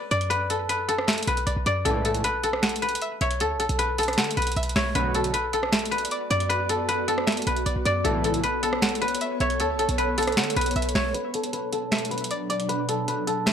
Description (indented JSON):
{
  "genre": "hip hop, trap",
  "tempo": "155 BPM",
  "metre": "4/4",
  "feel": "half-time",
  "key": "B minor",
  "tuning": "A4 = 440 Hz",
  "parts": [
    { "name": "guzheng", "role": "melody", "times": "0.0-13.5 s", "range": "A4 to D5", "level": "-26 LUFS", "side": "left 2 dB", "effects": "low-pass filter, analog delay" },
    { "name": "string-like resonator pluck", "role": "second line", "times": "0.0-13.5 s", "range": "D5 to F#5", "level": "-34 LUFS", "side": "right 1 dB", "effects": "chorus, analog delay" },
    { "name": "short 808-style bass", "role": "bass", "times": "0.1-11.1 s", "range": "B1 to D3", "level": "-30 LUFS", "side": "right 1 dB", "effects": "none" },
    { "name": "booming analog drum machine", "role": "drums", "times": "0.1-13.5 s", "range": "finger snaps, hi-hat, rim click, snare drum", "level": "-27 LUFS", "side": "right 1 dB", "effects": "none" },
    { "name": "sync-sweep polysynth", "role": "stabs", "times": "1.9-2.2, 5.0-5.3, 8.0-8.4 s", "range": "C#2 to F#3", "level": "-29 LUFS", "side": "equal", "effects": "chorus" },
    { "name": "ethereal airy pad", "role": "sustained chords", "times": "5.7-13.5 s", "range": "B2 to D5", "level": "-31 LUFS", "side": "right 1 dB", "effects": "ensemble chorus, built-in reverb, low-pass filter" }
  ],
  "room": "little or no reverb",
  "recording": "dry, gritty hardware recording",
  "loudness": "-22 LUFS",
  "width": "side -8 dB against mid",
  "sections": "0.0-11.1 A section; 11.1-13.5 B section",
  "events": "filter sweep 11.1-13.5",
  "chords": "0.0 Bm; 1.9 A; 5.0 Bm; 8.0 A; 11.1 Bm"
}